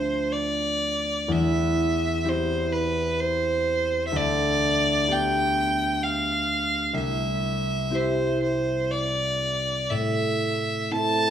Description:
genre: celtic folk, Celtic slow air.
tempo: 60-65 BPM.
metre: 3/4.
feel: rubato.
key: unclear.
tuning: A4 = 439 Hz.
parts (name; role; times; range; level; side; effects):
clear fiddle; melody; 0.0-11.3 s; B4 to A5; -24 LUFS; right 1 dB; none.
concert harp; accompaniment; 0.0-11.3 s; C2 to A4; -26 LUFS; equal; none.
room: moderate recital hall reverb, RT60 1.5 s.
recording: minimal, uncompressed stereo recording.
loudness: -22 LUFS.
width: side -9 dB against mid.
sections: 0.0-11.3 A section.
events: none.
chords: 0.0 Dm7; 1.3 C/E; 4.1 G/D; 6.9 C; 9.9 Am.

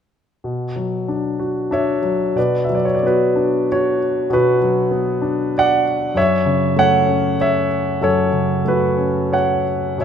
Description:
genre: classical, lyrical solo piano.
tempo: 88-100 BPM.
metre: 3/4.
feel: rubato.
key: B minor.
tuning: A4 = 441 Hz.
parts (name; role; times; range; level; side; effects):
clear grand piano; solo; 0.4-10.0 s; F#2 to F#5; -15 LUFS; equal; none.
room: light reverb.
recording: minimal, uncompressed stereo recording.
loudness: -15 LUFS.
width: side -8 dB against mid.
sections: 0.5-2.4 A section; 2.4-10.0 B section.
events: none.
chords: 0.5 Bmadd9; 6.2 F#m7.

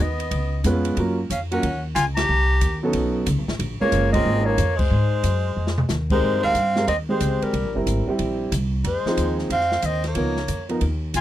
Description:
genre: jazz, small-group swing and bop.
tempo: 183 BPM.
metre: 4/4.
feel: swing 65% on 8ths.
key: Ab major from 6.2 s.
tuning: A4 = 439 Hz.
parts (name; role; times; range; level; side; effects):
growling clarinet; melody; 0.0-11.2 s; Bb4 to Bb5; -24 LUFS; left 1 dB; none.
edgy tenor saxophone; second line; 0.0-11.2 s; G3 to G4; -30 LUFS; right 4 dB; none.
upright bass; bass; 0.0-11.2 s; Gb1 to Ab2; -23 LUFS; equal; none.
open jazz drum kit; drums; 0.2-11.2 s; crash cymbal, hi-hat, kick drum, ride cymbal, snare drum, toms; -30 LUFS; equal; none.
warm concert grand piano; accompaniment; 0.6-10.8 s; F3 to C5; -24 LUFS; right 2 dB; none.
room: little or no reverb.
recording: dry, close 1970s-style studio recording.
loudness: -19 LUFS.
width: side -13 dB against mid.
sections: 0.0-6.2 A section; 6.2-11.2 B section.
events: band accent 2.1, 4.7; drum fill 5.6-5.9.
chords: 0.3 Db7; 1.0 Gbmaj7; 2.3 Cm7; 2.9 Cb9; 3.6 Bbm7; 4.9 Ab7; 6.2 Abmaj9; 7.5 C7; 8.8 Fm7; 10.2 Db13.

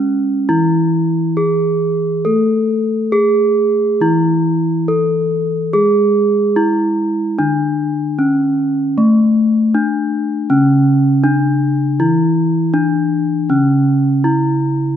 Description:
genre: gamelan.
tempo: 68-80 BPM.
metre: 4/4.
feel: straight.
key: C# pelog.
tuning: A4 = 439 Hz.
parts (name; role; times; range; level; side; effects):
gamelan-type bronze metallophone; melody; 0.0-15.0 s; A3 to A4; -14 LUFS; equal; none.
gamelan-type bronze metallophone; accompaniment; 0.0-15.0 s; C#3 to A3; -18 LUFS; left 1 dB; none.
room: moderate scoring stage reverb, RT60 1.9 s.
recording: close, detailed microphones.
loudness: -12 LUFS.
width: side -9 dB against mid.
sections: 0.0-10.5 A section; 10.5-15.0 B section.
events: none.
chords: none.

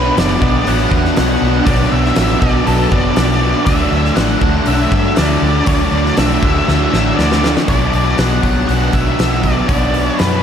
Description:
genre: rock, shoegaze and dream pop.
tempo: 120 BPM.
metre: 4/4.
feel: straight.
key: unclear.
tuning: A4 = 441 Hz.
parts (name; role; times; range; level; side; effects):
octave-fuzz lead guitar; melody; 0.0-10.4 s; A4 to F#5; -20 LUFS; left 1 dB; distortion, diffuse ambient delay.
raw garage guitar; riff; 0.0-10.4 s; B2 to D4; -19 LUFS; right 7 dB; overdrive, reverse reverb.
raw garage guitar; riff; 0.0-10.4 s; B2 to D4; -21 LUFS; equal; overdrive, lush chorus.
thick fuzz guitar; riff; 0.0-10.4 s; B2 to D4; -20 LUFS; left 7 dB; distortion, lush chorus.
vintage muted fingered electric bass; bass; 0.0-10.4 s; F#1 to G2; -18 LUFS; equal; none.
huge arena drum kit; drums; 0.2-10.3 s; hi-hat, kick drum, snare drum; -18 LUFS; equal; none.
room: moderate lush hall reverb, RT60 1.9 s, studio ambience.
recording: dreamy mix soaked in reverb.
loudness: -11 LUFS.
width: side -8 dB against mid.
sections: 0.0-7.7 A section; 7.7-10.4 B section.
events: drum fill 6.7-7.7.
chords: 0.0 Bm; 3.7 Dadd9; 7.7 Bm.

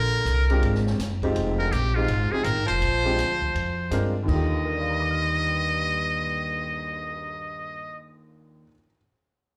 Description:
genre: jazz, small-group swing and bop.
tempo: 164 BPM.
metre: 4/4.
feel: swing 64% on 8ths.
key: Eb major.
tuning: A4 = 440 Hz.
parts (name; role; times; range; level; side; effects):
trumpet with metal mute; melody; 0.0-8.0 s; F4 to Eb5; -29 LUFS; equal; slapback echo.
warm baritone saxophone; second line; 0.0-8.0 s; G2 to F3; -36 LUFS; equal; slapback echo.
upright bass; bass; 0.0-8.6 s; F1 to G2; -28 LUFS; equal; none.
open jazz drum kit; drums; 0.3-7.1 s; crash cymbal, cymbal swell, hi-hat, kick drum, ride cymbal, snare drum; -39 LUFS; equal; none.
warm baby grand piano; accompaniment; 0.5-9.0 s; Eb2 to Bb6; -32 LUFS; equal; slapback echo.
room: light reverb, studio reverb.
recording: live gig heard through the venue's PA, club reverb.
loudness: -25 LUFS.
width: mono.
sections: 0.0-4.3 A section; 4.3-7.2 B section.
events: none.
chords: 0.0 Bb13; 1.4 Fm9; 2.8 Bb13; 4.3 Ebmaj9.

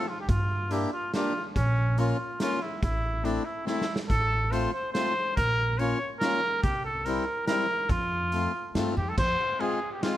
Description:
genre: alpine folk, alpine dance band.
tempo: 142 BPM.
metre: 3/4.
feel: straight.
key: F major.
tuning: A4 = 441 Hz.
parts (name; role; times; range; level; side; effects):
warm trumpet; melody; 0.0-10.2 s; Db4 to Db5; -29 LUFS; equal; none.
accordion; accompaniment; 0.0-10.2 s; G3 to G4; -32 LUFS; left 3 dB; none.
upright bass; bass; 0.3-9.3 s; A1 to G2; -29 LUFS; right 1 dB; none.
raw garage drum kit; drums; 0.3-10.1 s; crash cymbal, hi-hat, kick drum, ride cymbal, snare drum; -32 LUFS; right 1 dB; none.
room: light reverb.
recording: none.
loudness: -25 LUFS.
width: side -13 dB against mid.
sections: 0.0-9.2 A section.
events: drum fill 3.7-4.1.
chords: 0.3 Gm7; 1.6 Bbm; 2.8 Am; 4.1 F/A; 5.4 Bbm; 6.6 C7; 7.9 F; 9.2 Fm.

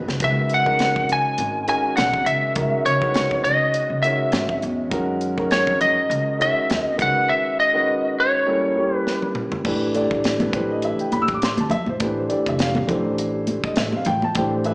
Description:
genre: electric jazz fusion.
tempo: 102 BPM.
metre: 4/4.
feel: swing 56% on 16ths.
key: C# dorian.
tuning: A4 = 439 Hz.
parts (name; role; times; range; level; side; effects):
warm concert grand piano; accompaniment; 0.0-14.7 s; D#3 to E6; -23 LUFS; equal; slapback echo.
upright bass; bass; 0.0-14.7 s; F1 to C#3; -27 LUFS; equal; none.
crisp fusion drum kit; drums; 0.1-14.7 s; crash cymbal, hi-hat, kick drum, snare drum, splash cymbal, toms; -26 LUFS; equal; none.
lightly driven lead guitar; melody; 0.2-9.3 s; C#5 to G#5; -19 LUFS; equal; slapback echo.
congas; percussion; 10.4-14.3 s; none; -26 LUFS; equal; none.
room: light reverb, studio ambience.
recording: live gig heard through the venue's PA, club reverb, small speaker sound.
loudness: -18 LUFS.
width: side -27 dB against mid.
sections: 0.0-9.6 A section; 9.6-14.7 B section.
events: drum fill 0.0, 9.1-9.6.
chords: 0.2 C#m11; 4.9 F#13; 7.0 C#sus2; 8.5 A7b9; 9.6 Dsus24/A; 12.0 G9sus4/A; 12.9 Fmaj13/A (rootless).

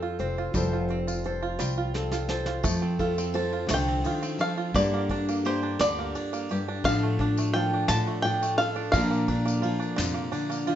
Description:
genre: acoustic folk duo or small band.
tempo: 57 BPM (dotted quarters).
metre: 6/8.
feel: straight.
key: unclear.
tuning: A4 = 440 Hz.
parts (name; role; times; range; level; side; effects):
bluegrass banjo; melody; 0.0-0.2, 3.7-10.3 s; C5 to A5; -28 LUFS; equal; none.
fingerpicked steel-string acoustic guitar; accompaniment; 0.0-10.8 s; G2 to C5; -29 LUFS; left 2 dB; none.
bluegrass banjo; arpeggios; 0.0-10.8 s; D3 to A4; -32 LUFS; right 6 dB; none.
upright bass; bass; 0.0-10.3 s; F1 to Bb2; -30 LUFS; equal; none.
soft brush drum kit; drums; 0.2-10.8 s; hi-hat, kick drum, ride cymbal, snare drum; -35 LUFS; equal; none.
tambourine; percussion; 0.5-10.7 s; none; -41 LUFS; left 6 dB; none.
room: moderate large studio reverb, RT60 0.8 s.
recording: nothing above 7.9 kHz.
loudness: -24 LUFS.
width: side -11 dB against mid.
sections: 0.5-2.6 A section; 2.6-10.8 B section.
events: drum fill 1.6-2.6.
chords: 0.0 Fadd9; 2.6 F; 4.7 Gm; 6.8 Dm/A; 8.9 Bb.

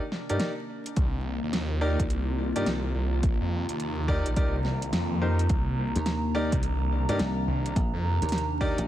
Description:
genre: glitch hop.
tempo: 106 BPM.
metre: 4/4.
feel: swing 63% on 16ths.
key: C minor.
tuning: A4 = 437 Hz.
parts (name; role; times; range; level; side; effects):
warbly tape-like pad; sustained chords; 0.0-8.9 s; C3 to F4; -34 LUFS; left 2 dB; chorus, built-in reverb, phaser, sidechain pumping.
warbly tape-like pad; texture; 0.2-8.9 s; Bb5; -38 LUFS; right 3 dB; chorus, built-in reverb, sidechain pumping.
pop drum kit; drums; 0.1-8.9 s; hi-hat, snare drum; -32 LUFS; equal; overdrive.
bright concert grand piano; stabs; 0.3-8.8 s; Eb4 to D5; -33 LUFS; equal; vintage 12-bit sampler grit, sidechain pumping, ping-pong delay.
phased detuned saw bass; bass; 0.3-8.2 s; Bb1 to G2; -28 LUFS; equal; phaser.
electronic kick drum; drums; 1.0-8.8 s; none; -27 LUFS; equal; overdrive.
dry thumbed slap bass; bass; 6.0-8.9 s; Bb1 to G2; -29 LUFS; equal; none.
room: light reverb.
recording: vinyl crackle.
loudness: -25 LUFS.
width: side -12 dB against mid.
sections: 0.0-8.9 A section.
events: none.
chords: 0.0 Cm9.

